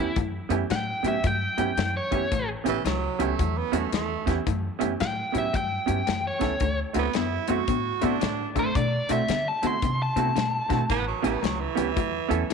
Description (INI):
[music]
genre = electric blues shuffle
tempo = 112 BPM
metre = 4/4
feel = swing 63% on 8ths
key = A mixolydian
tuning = A4 = 436 Hz
[part]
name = biting lead guitar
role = melody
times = 0.0-11.1 s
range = E4 to C6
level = -28 LUFS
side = left 1 dB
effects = overdrive
[part]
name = clear upright piano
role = accompaniment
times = 0.0-12.4 s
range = A3 to A4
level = -30 LUFS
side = right 13 dB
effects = none
[part]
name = electric guitar through a small old amp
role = riff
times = 0.0-12.5 s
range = A2 to B3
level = -31 LUFS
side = left 14 dB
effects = lush chorus
[part]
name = upright bass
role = bass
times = 0.0-12.5 s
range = A1 to D3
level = -31 LUFS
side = equal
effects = none
[part]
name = warm soul drum kit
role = drums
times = 0.2-12.5 s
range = hi-hat, kick drum, snare drum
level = -31 LUFS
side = left 3 dB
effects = none
[part]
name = growling tenor saxophone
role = second line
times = 2.7-12.5 s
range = E3 to F#4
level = -29 LUFS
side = right 10 dB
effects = none
[sound]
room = moderate spring reverb, RT60 2.5 s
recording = 1960s-style stereo with parts hard left and right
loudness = -23 LUFS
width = side -5 dB against mid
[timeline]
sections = 0.0-12.5 A section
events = none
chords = 0.0 A9; 6.6 D9; 10.9 A9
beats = | 0.17 0.70 1.24 1.78 | 2.32 2.85 3.39 3.93 | 4.46 5.00 5.54 6.08 | 6.61 7.15 7.68 8.22 | 8.76 9.29 9.83 10.36 | 10.90 11.44 11.97 12.51